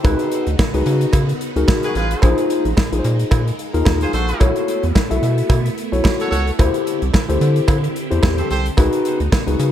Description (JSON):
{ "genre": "early-eighties boogie funk", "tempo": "110 BPM", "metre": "4/4", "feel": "swing 56% on 16ths", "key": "unclear", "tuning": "A4 = 440 Hz", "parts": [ { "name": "mellow tine electric piano", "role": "accompaniment", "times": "0.0-9.7 s", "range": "D4 to E5", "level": "-21 LUFS", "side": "left 3 dB", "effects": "lush chorus" }, { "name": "phased string machine", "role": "sustained chords", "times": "0.0-9.7 s", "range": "C#3 to G4", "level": "-28 LUFS", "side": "right 1 dB", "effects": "ensemble chorus, phaser" }, { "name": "rubbery square bass", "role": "bass", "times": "0.0-9.7 s", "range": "A1 to D3", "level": "-19 LUFS", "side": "equal", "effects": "none" }, { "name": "modern studio drum kit", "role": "drums", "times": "0.0-9.7 s", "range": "hi-hat, kick drum, snare drum", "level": "-18 LUFS", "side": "equal", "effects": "none" }, { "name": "cowbell", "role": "percussion", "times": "0.0-9.5 s", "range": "none", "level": "-29 LUFS", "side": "right 5 dB", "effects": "none" }, { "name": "warm horn section", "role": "second line", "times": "1.8-8.7 s", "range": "E#4 to C#5", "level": "-27 LUFS", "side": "right 1 dB", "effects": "tape echo" } ], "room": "light reverb, small room reverb", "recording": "none", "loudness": "-15 LUFS", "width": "side -10 dB against mid", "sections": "0.0-9.7 A section", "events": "none", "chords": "0.0 C#9sus4; 2.2 A#9sus4; 4.4 B9sus4; 6.6 D9sus4; 8.8 C#9sus4", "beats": "| 0.05 0.59 1.14 1.69 | 2.23 2.78 3.32 3.87 | 4.41 4.96 5.50 6.05 | 6.59 7.14 7.68 8.23 | 8.78 9.32" }